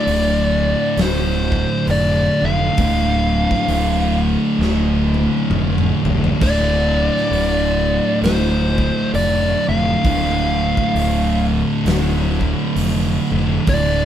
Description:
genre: stoner and doom metal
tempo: 66 BPM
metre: 4/4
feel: swing 60% on 8ths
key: D minor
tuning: A4 = 439 Hz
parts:
  - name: fuzz lead guitar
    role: melody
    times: 0.0-14.1 s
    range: C5 to F5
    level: -20 LUFS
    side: left 1 dB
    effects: distortion
  - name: thick fuzz guitar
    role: riff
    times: 0.0-14.1 s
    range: D2 to D3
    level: -22 LUFS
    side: left 7 dB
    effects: distortion
  - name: thick fuzz guitar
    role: riff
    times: 0.0-14.1 s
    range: D2 to D3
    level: -20 LUFS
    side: right 5 dB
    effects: distortion
  - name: fuzz fingered electric bass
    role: bass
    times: 0.1-14.1 s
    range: D1 to F1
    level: -21 LUFS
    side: equal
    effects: overdrive
  - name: big rock drum kit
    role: drums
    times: 0.1-13.9 s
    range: hi-hat, kick drum, snare drum, splash cymbal, toms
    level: -24 LUFS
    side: equal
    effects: none
room: light reverb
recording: band playing live in one room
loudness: -15 LUFS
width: side -10 dB against mid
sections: 0.0-14.1 A section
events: drum fill 4.6-6.4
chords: 0.0 Dm

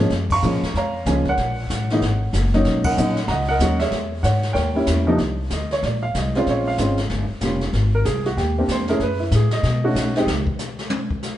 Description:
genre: jazz piano trio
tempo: 189 BPM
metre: 4/4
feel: swing 62% on 8ths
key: unclear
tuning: A4 = 441 Hz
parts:
  - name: dark baby grand piano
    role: melody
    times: 0.0-10.3 s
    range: B#2 to C#6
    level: -21 LUFS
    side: right 1 dB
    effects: none
  - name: upright bass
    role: bass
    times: 0.0-10.5 s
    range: F1 to B2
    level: -22 LUFS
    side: equal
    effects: none
  - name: jazz brush drum kit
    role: drums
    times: 0.1-11.3 s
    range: brushed snare drum, crash cymbal, hi-hat, kick drum, snare drum, toms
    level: -27 LUFS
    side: left 1 dB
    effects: none
room: moderate stone room reverb, RT60 1.4 s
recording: band playing live in one room, nothing above 10.5 kHz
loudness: -18 LUFS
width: side -13 dB against mid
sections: 0.0-5.2 A section; 5.2-11.4 B section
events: band accent 0.3, 2.8; grand piano solo 5.2-11.4; drum solo 10.3-11.4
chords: 0.1 F#maj7; 1.4 F#add9; 2.7 Bmaj7; 3.9 E69; 4.6 D#7b9; 5.2 C7sus2; 6.5 Bbm9; 7.1 Bbm6; 7.7 Abmaj9#11; 9.0 F#m; 9.6 B9; 10.3 N.C.

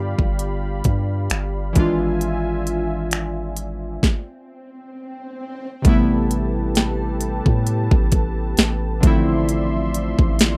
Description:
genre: contemporary R&B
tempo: 66 BPM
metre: 4/4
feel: swing 54% on 16ths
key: A minor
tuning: A4 = 440 Hz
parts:
  - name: warm analog keys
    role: accompaniment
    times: 0.0-10.6 s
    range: C3 to F4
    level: -26 LUFS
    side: equal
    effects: chorus
  - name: warm analog pad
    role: sustained chords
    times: 0.0-10.6 s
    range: F3 to C6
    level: -31 LUFS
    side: equal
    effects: chorus
  - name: long sustained 808-style bass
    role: bass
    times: 0.0-10.6 s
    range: G1 to A2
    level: -26 LUFS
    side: equal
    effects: none
  - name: trap drum kit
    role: drums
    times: 0.2-10.6 s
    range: finger snaps, hi-hat, kick drum, snare drum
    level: -20 LUFS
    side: equal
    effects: overdrive
  - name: swell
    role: sound effects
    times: 4.3-5.8 s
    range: none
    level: -38 LUFS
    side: equal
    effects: none
  - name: synth chime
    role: texture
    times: 6.8-9.4 s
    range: G5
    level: -42 LUFS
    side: equal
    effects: none
room: little or no reverb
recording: rough home demo mix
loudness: -20 LUFS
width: mono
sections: 0.0-5.8 A section; 5.8-10.6 B section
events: stop 4.0-5.8; swell 4.3-5.8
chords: 0.0 G7; 1.8 E7b9/G#; 5.8 Am9; 9.0 Dm9/A

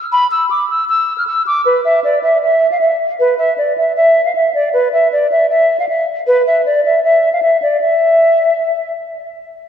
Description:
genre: hip hop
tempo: 156 BPM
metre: 4/4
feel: half-time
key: unclear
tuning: A4 = 440 Hz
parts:
  - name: hollow concert flute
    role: solo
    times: 0.1-8.9 s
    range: B4 to F6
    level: -11 LUFS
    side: equal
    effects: low-pass filter, tape echo
room: wet lush hall reverb, RT60 2.8 s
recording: dreamy mix soaked in reverb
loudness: -11 LUFS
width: side -8 dB against mid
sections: 0.0-1.7 A section; 1.7-7.8 B section; 7.8-9.7 C section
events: none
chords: none

